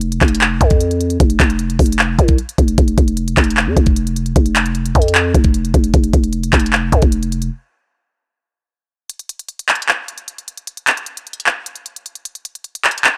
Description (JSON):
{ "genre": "hip hop, trap", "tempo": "152 BPM", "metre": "4/4", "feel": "half-time", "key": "unclear", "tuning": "A4 = 440 Hz", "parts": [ { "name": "growling 808-style bass", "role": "bass", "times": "0.0-7.5 s", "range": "F1 to F2", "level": "-18 LUFS", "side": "equal", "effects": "none" }, { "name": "trap drum kit", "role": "drums", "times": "0.0-13.1 s", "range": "handclaps, hi-hat, kick drum", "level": "-16 LUFS", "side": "equal", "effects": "none" } ], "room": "little or no reverb", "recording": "dry, gritty hardware recording", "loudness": "-15 LUFS", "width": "mono", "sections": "0.0-9.1 A section; 9.1-13.2 B section", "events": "break 7.5-9.1, 9.1-13.2", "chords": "none" }